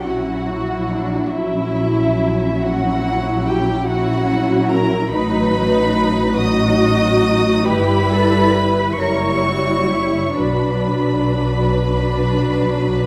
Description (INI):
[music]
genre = classical, slow romantic movement for string orchestra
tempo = 42-48 BPM (dotted quarters)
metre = 12/8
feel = rubato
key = unclear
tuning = A4 = 440 Hz
[part]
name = warm chamber violin section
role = melody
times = 0.0-13.1 s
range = E5 to D#6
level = -26 LUFS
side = equal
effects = none
[part]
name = clear symphonic violin section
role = second line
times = 0.0-13.1 s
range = E4 to D#5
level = -26 LUFS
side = equal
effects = none
[part]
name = warm chamber viola section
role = accompaniment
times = 0.0-13.1 s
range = F#3 to E4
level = -22 LUFS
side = equal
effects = none
[part]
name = warm chamber cello section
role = bass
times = 0.0-13.1 s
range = C#4 to B4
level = -26 LUFS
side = equal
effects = none
[part]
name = warm chamber double bass section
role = bass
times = 0.0-13.1 s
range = F#1 to B1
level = -22 LUFS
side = equal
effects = none
[sound]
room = moderate scoring stage reverb, RT60 1.5 s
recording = none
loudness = -17 LUFS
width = mono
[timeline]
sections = 0.0-13.1 A section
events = none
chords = 0.0 F#7/A#; 5.1 B7/A; 7.7 Em/G; 9.0 F#7b9; 10.4 Bm